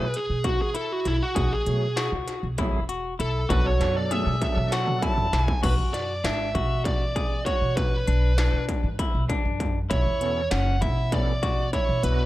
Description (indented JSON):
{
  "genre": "progressive instrumental, band music in an uneven meter",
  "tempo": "197 BPM (eighths)",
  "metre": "7/8",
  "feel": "straight",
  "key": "B dorian",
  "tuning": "A4 = 440 Hz",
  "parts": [
    { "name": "bluesy overdriven lead guitar", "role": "melody", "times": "0.0-12.3 s", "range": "E4 to A5", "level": "-28 LUFS", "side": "right 2 dB", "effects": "distortion, tape echo" },
    { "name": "bright tonewheel organ", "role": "accompaniment", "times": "0.0-5.3, 10.2-12.3 s", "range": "B2 to A4", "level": "-30 LUFS", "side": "right 1 dB", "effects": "overdrive, chorus vibrato, fast rotary speaker" },
    { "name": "clean electric guitar", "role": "arpeggios", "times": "0.0-12.2 s", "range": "C#4 to G#4", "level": "-32 LUFS", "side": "left 5 dB", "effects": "none" },
    { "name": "upright bass", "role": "bass", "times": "0.0-12.3 s", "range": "E1 to B2", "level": "-26 LUFS", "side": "equal", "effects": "none" },
    { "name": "industrial drum kit", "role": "drums", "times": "0.1-12.2 s", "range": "crash cymbal, hi-hat, kick drum, snare drum, toms", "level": "-27 LUFS", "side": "equal", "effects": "distortion" }
  ],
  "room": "light reverb",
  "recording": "dark, warm production",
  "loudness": "-22 LUFS",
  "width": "side -16 dB against mid",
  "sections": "0.0-5.6 A section; 5.6-12.3 B section",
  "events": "lead electric guitar solo 0.0-5.6; drum fill 3.8-5.6; kick and snare drop out 12.0",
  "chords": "0.0 B5; 1.4 F#madd9/B; 3.5 Bm7; 5.6 Bm; 9.9 A",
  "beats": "0.14 0.45 0.75 1.06 | 1.36 1.67 1.98 2.28 2.59 2.89 3.20 | 3.50 3.81 4.11 4.42 4.72 5.03 5.33 | 5.64 5.94 6.25 6.55 6.86 7.16 7.47 | 7.77 8.08 8.38 8.69 8.99 9.29 9.60 | 9.90 10.21 10.51 10.82 11.12 11.43 11.73 | 12.04"
}